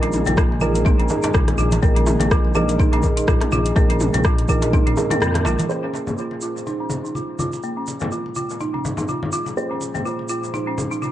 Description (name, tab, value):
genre	afro house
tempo	124 BPM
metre	4/4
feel	swing 56% on 16ths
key	Bb minor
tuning	A4 = 437 Hz
part	warm analog pad	sustained chords	0.0-11.1 s	Bb2 to Ab4	-29 LUFS	left 1 dB	chorus, sidechain pumping
part	folk marimba with hard mallets	arpeggios	0.0-11.1 s	Bb3 to F4	-25 LUFS	right 1 dB	sidechain pumping, low-pass filter, dub echo
part	felt-muted upright piano	stabs	0.0-11.1 s	Bb2 to C5	-27 LUFS	right 2 dB	sidechain pumping, dub echo
part	smooth synth bass	bass	0.0-5.6 s	Bb1 to F2	-22 LUFS	equal	sidechain pumping
part	deep house drum kit	drums	0.0-5.7 s	hi-hat, rim click, toms	-27 LUFS	left 1 dB	overdrive, low-pass filter on hats, low-pass filter on toms, low-pass filter on snare, dub echo
part	darbuka	percussion	0.0-5.7 s	none	-29 LUFS	right 2 dB	dub echo
part	congas	percussion	0.1-11.1 s	none	-29 LUFS	left 2 dB	dub echo
part	egg shaker	percussion	0.1-11.1 s	none	-36 LUFS	right 4 dB	none
part	electronic kick drum	drums	0.4-4.8 s	none	-18 LUFS	equal	overdrive
room	moderate spring reverb, RT60 1.1 s, small room ambience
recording	echo-heavy mix, nothing above 10.5 kHz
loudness	-18 LUFS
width	side -13 dB against mid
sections	0.0-5.7 A section; 5.7-11.1 B section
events	kick drops out 5.2-5.7; band accent 5.2; filter sweep on marimba 5.7-11.1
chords	0.0 Ebsus4/Bb; 5.7 Bbm7